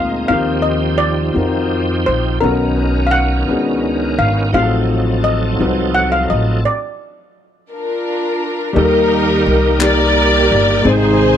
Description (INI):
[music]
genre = slow gospel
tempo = 57 BPM (dotted quarters)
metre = 6/8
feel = straight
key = Eb major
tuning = A4 = 440 Hz
[part]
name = steel pan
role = melody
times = 0.0-8.0 s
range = A#4 to F#5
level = -18 LUFS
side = left 1 dB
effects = none
[part]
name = warm concert grand piano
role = accompaniment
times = 0.0-11.4 s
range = A2 to C5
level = -18 LUFS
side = left 4 dB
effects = none
[part]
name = bright tonewheel organ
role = sustained chords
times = 0.0-11.4 s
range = D#3 to Bb4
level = -21 LUFS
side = right 4 dB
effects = fast rotary speaker, overdrive, chorus vibrato
[part]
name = upright bass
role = bass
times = 0.0-11.4 s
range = G1 to F2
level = -18 LUFS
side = right 1 dB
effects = none
[part]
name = dark studio string section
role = melody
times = 7.7-11.4 s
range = D4 to D5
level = -15 LUFS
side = left 1 dB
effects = none
[part]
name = group handclap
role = percussion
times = 9.8-10.1 s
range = none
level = -20 LUFS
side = left 6 dB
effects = none
[sound]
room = small room reverb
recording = dry, close 1970s-style studio recording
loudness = -13 LUFS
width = side -9 dB against mid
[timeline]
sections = 0.0-8.8 A section; 8.8-11.4 B section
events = stop 6.6-8.8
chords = 0.3 Eb69; 2.4 Bmaj9; 4.5 F7b9/A; 6.6 Bb; 8.8 Eb; 10.9 Ab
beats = | 0.30 1.36 | 2.42 3.48 | 4.54 5.59 | 6.65 7.70 | 8.76 9.81 | 10.86